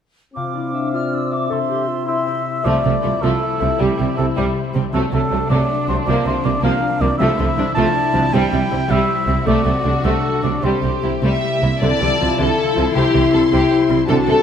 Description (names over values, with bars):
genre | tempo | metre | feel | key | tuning
cinematic | 106 BPM (dotted quarters) | 6/8 | straight | unclear | A4 = 440 Hz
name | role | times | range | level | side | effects
clear French horn section | sustained chords | 0.3-2.4, 11.8-14.4 s | C4 to A4 | -20 LUFS | left 4 dB | none
bright clarinet | second line | 0.4-2.5 s | D4 to A4 | -28 LUFS | left 1 dB | none
bright small flute group | second line | 0.4-2.5 s | C6 to F6 | -27 LUFS | right 2 dB | none
dark cor anglais | second line | 0.4-11.2 s | G4 to A5 | -22 LUFS | right 2 dB | none
concert harp | arpeggios | 0.4-14.4 s | C3 to E5 | -24 LUFS | left 8 dB | none
warm symphonic violin section | melody | 2.6-14.4 s | D4 to C6 | -28 LUFS | left 4 dB | none
rich symphonic viola section | accompaniment | 2.6-14.4 s | C3 to E4 | -24 LUFS | right 1 dB | none
rich symphonic violin section | second line | 2.7-14.4 s | G3 to E5 | -22 LUFS | left 2 dB | none
rich symphonic cello section | bass | 2.7-14.4 s | C3 | -23 LUFS | right 4 dB | none
warm symphonic double bass section | bass | 2.7-14.4 s | C2 | -22 LUFS | right 4 dB | none
room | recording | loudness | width
wet scoring stage reverb, RT60 1.6 s | none | -15 LUFS | side -8 dB against mid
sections
0.4-2.7 A section; 2.7-11.8 B section; 11.8-14.4 B section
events
none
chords
0.4 Dmadd9/C; 1.5 C; 2.7 Dmadd9/C; 3.8 C; 4.9 D/C; 6.1 Bb/C; 7.2 Dmadd9/C; 8.3 C; 9.5 D/C; 10.6 C; 11.8 Dmadd9/C; 13.0 C